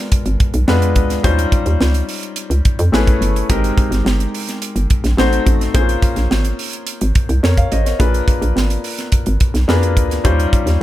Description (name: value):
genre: polished 1980s jazz-funk pop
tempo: 107 BPM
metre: 4/4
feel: straight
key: Bb dorian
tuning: A4 = 439 Hz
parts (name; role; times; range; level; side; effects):
- dark grand piano; accompaniment; 0.0-10.8 s; G3 to F5; -20 LUFS; left 3 dB; wide subtle chorus
- crisp fusion drum kit; drums; 0.1-10.8 s; hi-hat, kick drum, snare drum; -17 LUFS; equal; none
- hollow knocking FM bass; bass; 0.3-10.8 s; G1 to F2; -16 LUFS; equal; none
room: studio reverb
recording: none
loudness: -13 LUFS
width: side -14 dB against mid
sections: 0.0-10.8 A section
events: none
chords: 0.0 Bb7b9; 1.2 Eb13; 2.9 Amaj9; 3.5 Abmaj9; 5.2 Adim7; 5.7 Bbm9; 8.0 Bb7b9; 10.2 Eb13